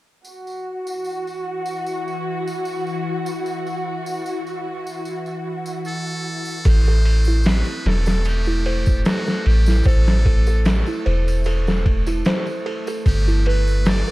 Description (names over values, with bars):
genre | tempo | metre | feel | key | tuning
trip hop | 75 BPM | 4/4 | swing 54% on 16ths | A dorian | A4 = 440 Hz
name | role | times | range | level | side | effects
tambourine | percussion | 0.2-14.1 s | none | -43 LUFS | equal | none
warm studio violin section | sustained chords | 0.3-6.7 s | F#4 | -27 LUFS | equal | low-pass filter
bowed-like drone | texture | 1.1-14.1 s | E3 to A4 | -31 LUFS | left 2 dB | built-in reverb, phaser
trumpet with metal mute | melody | 5.9-14.1 s | F#4 to D5 | -30 LUFS | equal | tape echo
music box | arpeggios | 6.7-14.1 s | C4 to C5 | -27 LUFS | right 2 dB | vintage 12-bit sampler grit, low-pass filter, tape echo
soft 808-style bass | bass | 6.7-14.0 s | E1 to A1 | -17 LUFS | equal | none
trip hop sampler-style drum kit | drums | 6.7-14.1 s | kick drum, ride cymbal, snare drum | -21 LUFS | equal | none
room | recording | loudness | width
small room ambience | dark, warm production | -18 LUFS | side -19 dB against mid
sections
0.3-6.7 A section; 6.7-14.1 B section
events
filter sweep on music box 6.7-14.1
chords
0.3 N.C.; 6.7 Am; 13.1 G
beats
| 0.26 1.06 1.86 2.66 | 3.46 4.26 5.06 5.86 | 6.66 7.46 8.26 9.06 | 9.86 10.66 11.46 12.26 | 13.06 13.86